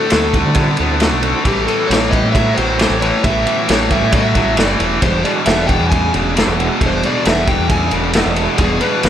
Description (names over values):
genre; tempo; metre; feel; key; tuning
blues rock power trio and southern rock; 134 BPM; 4/4; straight; unclear; A4 = 444 Hz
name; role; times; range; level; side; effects
overdriven slide guitar; melody; 0.0-9.1 s; G4 to G#5; -20 LUFS; equal; none
overdriven tonewheel organ; sustained chords; 0.0-9.1 s; G#3 to A4; -25 LUFS; right 4 dB; slow rotary speaker, chorus vibrato
sludgy distorted guitar; riff; 0.0-9.1 s; E2 to B3; -17 LUFS; left 1 dB; overdrive
growling fingered electric bass; bass; 0.1-9.1 s; E1 to D3; -20 LUFS; equal; overdrive
raw garage drum kit; drums; 0.1-9.1 s; kick drum, ride cymbal, snare drum; -17 LUFS; equal; none
room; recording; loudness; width
moderate large studio reverb, RT60 0.9 s, small room ambience; none; -12 LUFS; side -10 dB against mid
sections
0.0-9.1 A section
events
none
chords
0.0 D7; 1.5 A7; 5.0 E7